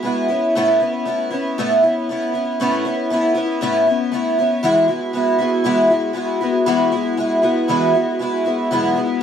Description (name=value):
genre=rock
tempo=118 BPM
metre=4/4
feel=straight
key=E major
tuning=A4 = 437 Hz
part: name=picked twelve-string acoustic guitar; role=solo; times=0.0-9.2 s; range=E2 to F#4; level=-16 LUFS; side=equal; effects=wide subtle chorus, slapback echo
room=light reverb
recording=dark, warm production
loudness=-16 LUFS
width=side -8 dB against mid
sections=0.0-8.7 A section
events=none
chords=0.3 Aadd9; 4.6 Eadd9